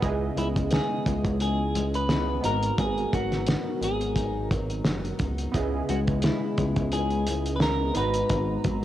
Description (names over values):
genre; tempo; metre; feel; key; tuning
indie pop, bedroom pop; 87 BPM; 4/4; swing 55% on 16ths; C# dorian; A4 = 440 Hz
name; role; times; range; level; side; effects
picked steel-string acoustic guitar; accompaniment; 0.0-8.8 s; G#2 to E4; -32 LUFS; left 5 dB; lush chorus, vibrato effect, cassette tape
warm analog keys; accompaniment; 0.0-8.8 s; B3 to A#5; -33 LUFS; right 7 dB; chorus, cassette tape
chorused synth bass; bass; 0.0-8.8 s; F#1 to C#2; -29 LUFS; equal; none
cloth-damped thuddy drum kit; drums; 0.0-8.8 s; hi-hat, kick drum, snare drum; -28 LUFS; equal; none
clean electric guitar; melody; 0.4-8.8 s; E4 to B4; -30 LUFS; left 1 dB; wide subtle chorus
room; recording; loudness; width
light reverb, small room ambience; home recording on cassette; -24 LUFS; side -12 dB against mid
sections
0.0-8.8 A section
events
none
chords
0.0 C#m7; 2.4 G#m7; 5.5 C#m7; 8.0 G#m7